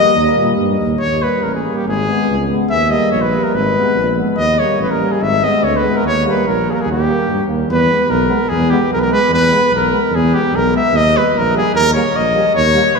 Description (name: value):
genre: balkan folk, Balkan brass band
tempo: 145 BPM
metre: 2/4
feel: straight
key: Eb phrygian dominant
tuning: A4 = 441 Hz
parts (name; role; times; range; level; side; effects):
- clear trumpet; melody; 0.0-13.0 s; G4 to Fb5; -15 LUFS; left 1 dB; none
- clear euphonium; accompaniment; 0.0-12.8 s; Bb3 to B3; -23 LUFS; left 1 dB; none
- mellow trombone; accompaniment; 0.0-12.8 s; G3 to Ab3; -22 LUFS; right 1 dB; none
- mellow tuba; bass; 0.2-13.0 s; Ab1 to Bb2; -18 LUFS; equal; none
room: wet cathedral reverb, RT60 4.0 s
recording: recorded in a church or concert hall, studio reverb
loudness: -12 LUFS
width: side -4 dB against mid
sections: 0.0-1.0 A section; 1.0-7.7 B section; 7.7-13.0 C section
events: speeding up 0.0-13.0; trumpet solo 0.0-1.0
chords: 0.0 Eb; 1.9 Abm; 2.7 Eb; 3.5 Abm; 4.4 Eb; 5.2 Abm; 6.0 Eb; 7.7 E; 10.9 Eb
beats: | 0.17 0.59 | 1.01 1.43 | 1.85 2.27 | 2.69 3.11 | 3.53 3.95 | 4.37 4.79 | 5.20 5.62 | 6.03 6.45 | 6.86 7.27 | 7.68 8.09 | 8.50 8.91 | 9.31 9.72 | 10.13 10.53 | 10.94 11.34 | 11.74 12.15 | 12.55 12.95